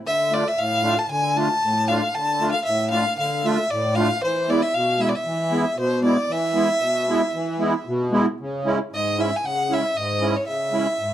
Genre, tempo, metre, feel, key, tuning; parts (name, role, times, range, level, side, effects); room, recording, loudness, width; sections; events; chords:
klezmer; 115 BPM; 4/4; straight; E phrygian dominant; A4 = 440 Hz
musette accordion; accompaniment; 0.0-11.1 s; G#2 to F4; -23 LUFS; right 1 dB
clear violin; melody; 0.1-11.1 s; C5 to A5; -22 LUFS; equal
moderate small room reverb, RT60 0.5 s; dark, warm production; -19 LUFS; side -11 dB against mid
0.0-8.4 A section; 8.4-11.1 B section
0.0 Dm; 4.2 E; 8.4 C#m